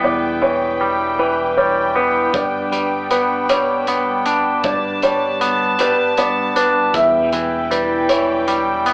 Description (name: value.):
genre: post-rock.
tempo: 52 BPM (dotted quarters).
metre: 6/8.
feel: straight.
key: unclear.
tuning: A4 = 440 Hz.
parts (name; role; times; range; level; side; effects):
rich chamber string section; sustained chords; 0.0-8.9 s; G3 to A5; -22 LUFS; equal; none.
felt-muted upright piano; arpeggios; 0.0-8.9 s; B4 to E5; -19 LUFS; equal; none.
twangy electric guitar; arpeggios; 0.0-8.9 s; E2 to D4; -18 LUFS; equal; none.
modern bright fingered electric bass; bass; 0.0-8.9 s; E1 to G1; -38 LUFS; equal; none.
loose indie drum kit; drums; 2.3-8.9 s; hi-hat, kick drum; -28 LUFS; equal; none.
room: wet studio reverb, RT60 0.5 s.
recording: band playing live in one room, AM radio sound.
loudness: -14 LUFS.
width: side -31 dB against mid.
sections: 0.0-8.9 A section.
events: none.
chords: 0.0 Em; 2.3 G; 6.9 Em.